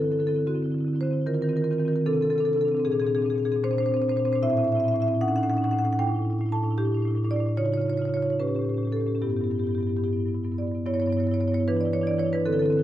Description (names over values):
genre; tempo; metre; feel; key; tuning
classical, contemporary piece for solo marimba; 75 BPM (dotted quarters); 6/8; straight; unclear; A4 = 440 Hz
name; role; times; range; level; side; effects
marimba with medium mallets; solo; 0.0-12.8 s; G2 to A5; -22 LUFS; equal; none
room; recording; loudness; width
moderate recital hall reverb, RT60 1.4 s; dark, warm production; -23 LUFS; side -12 dB against mid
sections
0.0-10.9 A section; 10.9-12.8 A section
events
none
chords
0.0 D9; 1.3 Ebsus2; 2.1 Csus2; 2.9 Bb9; 4.4 Am; 5.2 F#m6/A; 6.0 Dsus24/A; 7.6 C#add9; 8.4 A9; 9.2 G6; 11.7 Bmadd11/E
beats
0.48 | 1.27 2.07 | 2.86 3.65 | 4.43 5.21 | 6.00 6.78 | 7.58 8.39 | 9.21 10.04 | 10.86 11.66 | 12.47